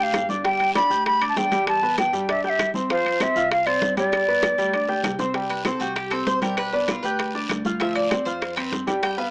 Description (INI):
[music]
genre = latin, salsa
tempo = 196 BPM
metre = 4/4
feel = straight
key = unclear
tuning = A4 = 436 Hz
[part]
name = bright wooden flute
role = melody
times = 0.0-5.0 s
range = C5 to B5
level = -23 LUFS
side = equal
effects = cassette tape
[part]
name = clear grand piano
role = accompaniment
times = 0.0-9.3 s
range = F3 to G6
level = -28 LUFS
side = equal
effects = cassette tape
[part]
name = upright bass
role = bass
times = 0.0-9.3 s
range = G1 to G2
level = -39 LUFS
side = equal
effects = none
[part]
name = bongos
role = percussion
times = 0.1-9.3 s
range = none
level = -33 LUFS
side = equal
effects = none
[part]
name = congas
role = percussion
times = 0.1-9.3 s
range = none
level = -34 LUFS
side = equal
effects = none
[part]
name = guiro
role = percussion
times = 0.1-9.3 s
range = none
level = -40 LUFS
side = equal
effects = none
[part]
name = timbales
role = percussion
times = 0.1-9.2 s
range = none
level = -33 LUFS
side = equal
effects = none
[part]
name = Cuban tres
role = melody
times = 5.5-9.3 s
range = D4 to G5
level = -29 LUFS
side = equal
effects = cassette tape
[sound]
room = moderate spring reverb, RT60 1.3 s, small room ambience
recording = home recording on cassette, small speaker sound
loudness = -23 LUFS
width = mono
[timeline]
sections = 0.0-5.3 A section; 5.3-9.3 B section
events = drum fill 4.1-5.3; Cuban tres solo 5.3-9.3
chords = 0.0 G; 1.7 Em7; 2.9 F5; 4.1 G; 5.3 C5; 6.6 G7/B; 7.8 Dm7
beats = 0.14 | 0.44 0.75 1.06 1.36 | 1.67 1.98 2.28 2.59 | 2.90 3.20 3.51 3.82 | 4.12 4.43 4.74 5.04 | 5.35 5.66 5.96 6.27 | 6.58 6.88 7.19 7.50 | 7.80 8.11 8.41 8.72 | 9.03